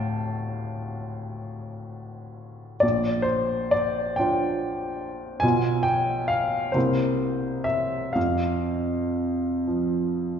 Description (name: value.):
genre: classical, romantic nocturne for solo piano.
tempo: 39-53 BPM (dotted quarters).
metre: 12/8.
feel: rubato.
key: unclear.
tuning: A4 = 439 Hz.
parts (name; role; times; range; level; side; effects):
clear upright piano; solo; 0.0-10.4 s; Bb1 to A5; -23 LUFS; equal; none.
room: wet concert hall reverb, RT60 1.8 s.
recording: recorded in a church or concert hall, nothing above 7.5 kHz.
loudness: -23 LUFS.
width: side -8 dB against mid.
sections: 0.0-10.4 A section.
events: none.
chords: 0.0 D5; 2.8 Gm7/Bb; 5.4 G7b9/B; 6.7 C7; 8.2 N.C..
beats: 0.51 1.65 | 2.83 4.19 5.43 6.75 | 8.15 9.67.